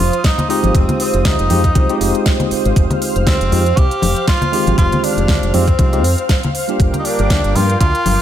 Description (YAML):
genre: nu-disco, nu disco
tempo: 119 BPM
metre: 4/4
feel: swing 55% on 16ths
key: F dorian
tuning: A4 = 440 Hz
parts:
  - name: clear tenor saxophone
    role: melody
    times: 0.0-8.2 s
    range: C4 to G4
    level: -20 LUFS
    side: right 1 dB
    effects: tape echo
  - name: lush unison pad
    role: sustained chords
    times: 0.0-8.2 s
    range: Bb4 to F6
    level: -22 LUFS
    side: right 2 dB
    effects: chorus, sidechain pumping
  - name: fingered electric bass with an envelope filter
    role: bass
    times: 0.0-8.2 s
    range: F1 to G2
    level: -17 LUFS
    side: equal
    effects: none
  - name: pop drum kit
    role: drums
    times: 0.0-8.2 s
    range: hi-hat, snare drum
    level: -23 LUFS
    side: right 1 dB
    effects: studio reverb
  - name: electronic kick drum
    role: drums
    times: 0.2-7.9 s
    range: none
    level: -14 LUFS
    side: equal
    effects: overdrive, studio reverb
  - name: congas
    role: percussion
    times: 0.4-8.2 s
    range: none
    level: -22 LUFS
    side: left 3 dB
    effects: none
  - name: tine electric piano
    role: accompaniment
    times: 0.5-7.7 s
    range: Eb3 to G4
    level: -21 LUFS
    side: left 1 dB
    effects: medium stereo tremolo
room: digital ambience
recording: none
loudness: -12 LUFS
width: side -11 dB against mid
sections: 0.0-8.2 A section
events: none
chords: 0.0 Fm7; 6.8 Gm7